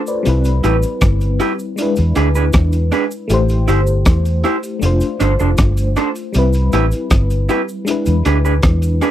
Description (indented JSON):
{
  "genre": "lovers rock reggae",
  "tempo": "79 BPM",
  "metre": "4/4",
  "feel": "straight",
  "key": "C major",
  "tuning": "A4 = 438 Hz",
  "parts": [
    { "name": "FM electric piano with tremolo", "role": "accompaniment", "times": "0.0-9.1 s", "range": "G3 to D5", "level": "-20 LUFS", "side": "left 3 dB", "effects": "phaser, tape echo" },
    { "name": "cabasa", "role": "percussion", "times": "0.1-9.1 s", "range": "none", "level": "-37 LUFS", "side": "right 2 dB", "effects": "none" },
    { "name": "vintage muted fingered electric bass", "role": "bass", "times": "0.3-9.0 s", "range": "F1 to E2", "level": "-15 LUFS", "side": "equal", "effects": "none" },
    { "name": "crunchy breakbeat drum kit", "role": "drums", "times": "0.3-9.1 s", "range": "hi-hat, kick drum, rim click", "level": "-18 LUFS", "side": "equal", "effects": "tape echo" },
    { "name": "electric guitar through a small old amp", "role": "stabs", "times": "0.6-9.1 s", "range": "D4 to C5", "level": "-17 LUFS", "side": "right 4 dB", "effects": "none" }
  ],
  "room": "little or no reverb",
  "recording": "dry, close 1970s-style studio recording",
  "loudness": "-13 LUFS",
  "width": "side -12 dB against mid",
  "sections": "0.0-9.1 A section",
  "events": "none",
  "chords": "0.3 Cmaj7; 1.8 E7; 3.3 Am7; 4.8 F6; 6.3 Cmaj7; 7.9 E7"
}